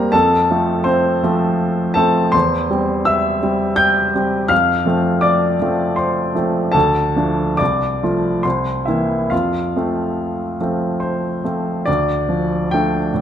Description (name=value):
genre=classical, romantic character piece for solo piano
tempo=67-84 BPM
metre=3/4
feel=rubato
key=F major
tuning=A4 = 440 Hz
part: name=clear baby grand piano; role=solo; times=0.0-13.2 s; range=C2 to G6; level=-15 LUFS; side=equal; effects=none
room=moderate recital hall reverb, RT60 1.4 s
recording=close, detailed microphones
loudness=-15 LUFS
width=side -9 dB against mid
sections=0.0-11.9 A section; 11.9-13.2 B section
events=none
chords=0.1 F; 2.3 C/E; 4.5 F; 6.7 Dm; 7.6 F/C; 8.4 C7; 9.3 F; 11.9 Dm